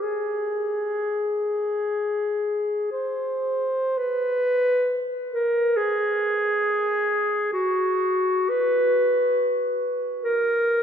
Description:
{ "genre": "classical, free, expressive piece for unaccompanied clarinet", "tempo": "free time", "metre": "none", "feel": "none", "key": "Ab major", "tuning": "A4 = 441 Hz", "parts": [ { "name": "clear clarinet", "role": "solo", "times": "0.0-10.8 s", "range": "F#4 to C5", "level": "-21 LUFS", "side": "equal", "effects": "none" } ], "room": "wet cathedral reverb, RT60 6.1 s", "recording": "none", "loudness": "-21 LUFS", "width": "side -8 dB against mid", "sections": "0.0-4.0 A section; 4.0-10.8 B section", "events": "none", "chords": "none" }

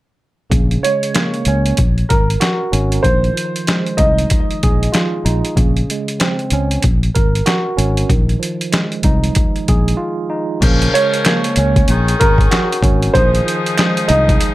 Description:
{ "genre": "hip hop, boom-bap hip-hop", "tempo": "95 BPM", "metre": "4/4", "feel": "swing 62% on 16ths", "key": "Bb minor", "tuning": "A4 = 440 Hz", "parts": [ { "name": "tine electric piano", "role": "accompaniment", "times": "0.5-14.5 s", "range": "Db3 to Bb4", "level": "-20 LUFS", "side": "right 2 dB", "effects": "medium stereo tremolo, cassette tape, high-pass filter, low-pass filter, plate reverb" }, { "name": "fingered electric bass", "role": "bass", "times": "0.5-14.3 s", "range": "Ab1 to Db2", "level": "-16 LUFS", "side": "equal", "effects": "none" }, { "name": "boom bap sampler-style drum kit", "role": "drums", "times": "0.5-14.5 s", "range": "crash cymbal, hi-hat, kick drum, snare drum", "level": "-16 LUFS", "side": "equal", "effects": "none" }, { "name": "dark upright piano", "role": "melody", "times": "0.8-4.9, 10.9-14.5 s", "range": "Bb4 to Eb5", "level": "-18 LUFS", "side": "right 1 dB", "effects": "high-pass filter, low-pass filter, plate reverb, ping-pong delay" }, { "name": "clear saxophone section", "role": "stabs", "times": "10.6-14.5 s", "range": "Eb3 to Bb4", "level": "-21 LUFS", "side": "left 2 dB", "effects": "high-pass filter, low-pass filter, plate reverb, ping-pong delay" }, { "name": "finger snap", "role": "percussion", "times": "11.2-14.0 s", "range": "none", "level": "-25 LUFS", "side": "right 3 dB", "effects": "none" } ], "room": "light reverb", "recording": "none", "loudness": "-13 LUFS", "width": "side -17 dB against mid", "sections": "0.5-10.6 A section; 10.6-14.5 B section", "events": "break 10.0-10.6", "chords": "0.5 Bbm7; 1.8 Ab9sus4; 3.0 Fm7/Bb; 5.6 Bbm9; 6.8 Ab9sus4; 8.1 Fm7/Bb; 10.6 Bbm7; 11.9 Ab9sus4; 13.1 Fm7/Bb" }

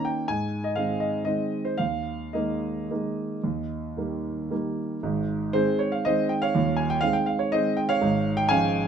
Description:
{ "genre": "classical, piano waltz", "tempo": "106-131 BPM", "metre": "3/4", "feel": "rubato", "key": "Ab major", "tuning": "A4 = 442 Hz", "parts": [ { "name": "warm grand piano", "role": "solo", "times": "0.0-8.9 s", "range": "Eb1 to Ab5", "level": "-24 LUFS", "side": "right 1 dB", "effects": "none" } ], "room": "light reverb", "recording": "close, detailed microphones", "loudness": "-24 LUFS", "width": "side -7 dB against mid", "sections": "0.0-5.0 A section; 5.0-8.9 B section", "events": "none", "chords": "0.3 Ab; 1.8 Ebsus4; 3.4 Eb; 5.0 Ab; 8.0 Db/Ab" }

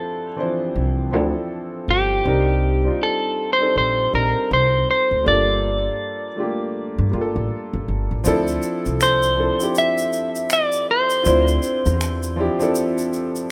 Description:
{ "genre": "R&B, neo-soul", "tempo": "80 BPM", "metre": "4/4", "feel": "swing 60% on 16ths", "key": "D minor", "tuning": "A4 = 439 Hz", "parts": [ { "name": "electric guitar at the edge of break-up", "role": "melody", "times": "0.0-12.4 s", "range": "G4 to E5", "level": "-22 LUFS", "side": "equal", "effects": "tape echo" }, { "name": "warm concert grand piano", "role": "accompaniment", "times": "0.0-13.5 s", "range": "E3 to C5", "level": "-26 LUFS", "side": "equal", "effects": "none" }, { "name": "upright bass", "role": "bass", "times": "0.8-12.5 s", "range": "G1 to G2", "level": "-24 LUFS", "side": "equal", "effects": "none" }, { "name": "tube shaker and finger snaps", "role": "percussion", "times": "8.2-13.5 s", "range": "none", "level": "-32 LUFS", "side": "equal", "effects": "none" } ], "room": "light reverb, small room reverb", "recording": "rough home demo mix", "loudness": "-20 LUFS", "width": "mono", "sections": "0.0-8.2 A section; 8.2-13.5 B section", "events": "none", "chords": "0.0 Dm9; 2.2 Cm9; 5.2 Gm9; 8.2 Dm9" }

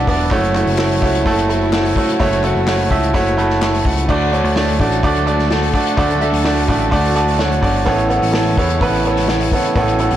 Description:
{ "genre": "piano-driven pop", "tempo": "127 BPM", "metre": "4/4", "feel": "straight", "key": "unclear", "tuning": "A4 = 439 Hz", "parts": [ { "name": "bright upright piano", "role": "accompaniment", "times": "0.0-10.2 s", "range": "A2 to C#6", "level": "-16 LUFS", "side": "right 2 dB", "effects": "none" }, { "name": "warm studio string section", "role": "sustained chords", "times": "0.0-10.2 s", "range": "B2 to A4", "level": "-25 LUFS", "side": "left 4 dB", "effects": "none" }, { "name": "picked electric bass", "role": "bass", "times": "0.0-10.2 s", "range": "E1 to E2", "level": "-19 LUFS", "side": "left 1 dB", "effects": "tube saturation" }, { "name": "unplugged drum kit", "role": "drums", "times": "0.1-10.2 s", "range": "crash cymbal, hi-hat, kick drum, snare drum", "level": "-21 LUFS", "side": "left 2 dB", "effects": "none" }, { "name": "group handclap", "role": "percussion", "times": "0.6-3.7 s", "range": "none", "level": "-30 LUFS", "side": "left 7 dB", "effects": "none" } ], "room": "light reverb, small room ambience", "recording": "blown-out, overdriven recording, overdrive", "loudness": "-13 LUFS", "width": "side -12 dB against mid", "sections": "0.0-4.1 A section; 4.1-10.2 A section", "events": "upright piano fill 0.0-0.3, 3.1-4.1, 6.9-7.9", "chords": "0.3 F#m7; 4.1 D; 7.9 Aadd9" }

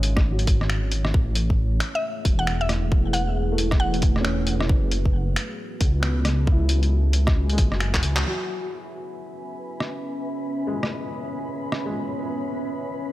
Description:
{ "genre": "future garage", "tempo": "135 BPM", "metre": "4/4", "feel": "swing 62% on 16ths", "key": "C# minor", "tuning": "A4 = 440 Hz", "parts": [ { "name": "dark upright piano", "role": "accompaniment", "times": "0.0-13.1 s", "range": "C#3 to E4", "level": "-33 LUFS", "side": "left 1 dB", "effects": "sidechain pumping, tape echo" }, { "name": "deep dark ambient pad", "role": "sustained chords", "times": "0.0-13.1 s", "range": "A3 to B5", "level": "-31 LUFS", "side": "right 1 dB", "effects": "chorus, built-in reverb, sidechain pumping" }, { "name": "dark detuned saw bass", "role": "bass", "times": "0.0-8.2 s", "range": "E1 to C#2", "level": "-22 LUFS", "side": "equal", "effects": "tube saturation, sidechain pumping" }, { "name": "lo-fi sampler-style drum kit", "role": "drums", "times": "0.0-11.8 s", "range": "finger snaps, handclaps, hi-hat, rim click", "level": "-28 LUFS", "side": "equal", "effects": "overdrive, studio reverb" }, { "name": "electronic kick drum", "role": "drums", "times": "0.2-8.0 s", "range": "none", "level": "-20 LUFS", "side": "equal", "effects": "studio reverb" }, { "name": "mallet-like synth pluck", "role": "melody", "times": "2.0-4.2 s", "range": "E5 to F#5", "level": "-29 LUFS", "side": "equal", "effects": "chorus, tape echo" }, { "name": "wind-like tuned noise texture", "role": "texture", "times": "9.0-13.1 s", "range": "B3 to B4", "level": "-36 LUFS", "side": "left 2 dB", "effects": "built-in reverb" } ], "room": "light reverb", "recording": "none", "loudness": "-21 LUFS", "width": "side -16 dB against mid", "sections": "0.0-8.3 A section; 8.3-13.1 B section", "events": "drum fill 7.9-8.3; band accent 8.1", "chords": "0.0 C#m7; 1.1 Amaj9; 4.7 F#m11; 8.3 C#m7" }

